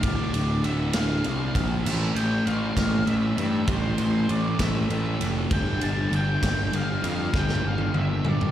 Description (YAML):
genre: quiet-loud alternative rock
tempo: 66 BPM (dotted quarters)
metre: 6/8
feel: straight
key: unclear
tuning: A4 = 441 Hz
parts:
  - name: octave-fuzz lead guitar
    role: melody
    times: 0.0-8.5 s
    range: C5 to A5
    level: -32 LUFS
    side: equal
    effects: distortion, slapback echo, tape echo
  - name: thick fuzz guitar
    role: riff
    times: 0.0-8.5 s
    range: D2 to C4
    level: -26 LUFS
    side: equal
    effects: distortion
  - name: fuzz picked electric bass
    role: bass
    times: 0.0-8.5 s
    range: D1 to G2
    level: -27 LUFS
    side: equal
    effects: overdrive
  - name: big rock drum kit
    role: drums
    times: 0.0-8.5 s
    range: crash cymbal, kick drum, ride cymbal, snare drum, toms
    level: -29 LUFS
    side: equal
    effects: none
room: little or no reverb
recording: live gig heard through the venue's PA, recital hall reverb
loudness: -22 LUFS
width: side -11 dB against mid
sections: 0.0-8.5 A section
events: drum fill 7.3-8.5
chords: 0.0 D5; 1.2 C5; 1.5 Bb5; 1.9 A5; 5.5 G5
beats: | 0.03 0.94 | 1.85 2.77 | 3.68 4.59 | 5.51 6.42 | 7.33 8.25